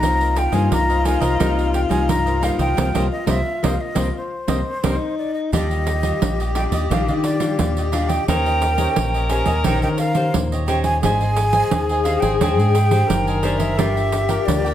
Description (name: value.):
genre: samba and choro.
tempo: 87 BPM.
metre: 4/4.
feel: straight.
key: C minor, Eb major from 5.5 s.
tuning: A4 = 440 Hz.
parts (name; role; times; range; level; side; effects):
breathy jazz flute; melody; 0.0-14.7 s; C5 to Bb5; -23 LUFS; right 1 dB; none.
breathy tenor saxophone; second line; 0.0-14.7 s; Eb4 to Bb4; -24 LUFS; left 4 dB; none.
cavaquinho; accompaniment; 0.0-14.7 s; D4 to Ab5; -29 LUFS; right 4 dB; none.
nylon-string guitar; accompaniment; 0.0-14.7 s; G2 to C5; -26 LUFS; left 3 dB; none.
deep dub fingered electric bass; bass; 0.0-14.7 s; Gb1 to Eb3; -21 LUFS; equal; none.
pandeiro; percussion; 0.0-14.7 s; none; -25 LUFS; right 4 dB; none.
room: moderate studio reverb, RT60 0.8 s.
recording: heard from further back in the room.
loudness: -17 LUFS.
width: side -11 dB against mid.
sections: 0.0-5.5 A section; 5.5-14.7 B section.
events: band accent 2.8-5.5.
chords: 0.0 Cm7; 5.5 Ebmaj9; 8.3 Eb6; 11.0 Abmaj9#11; 13.8 Gm7.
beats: | 0.03 0.72 1.40 2.09 | 2.78 3.47 4.16 4.84 | 5.53 6.22 6.91 7.59 | 8.28 8.97 9.66 10.34 | 11.03 11.72 12.41 13.10 | 13.79 14.47.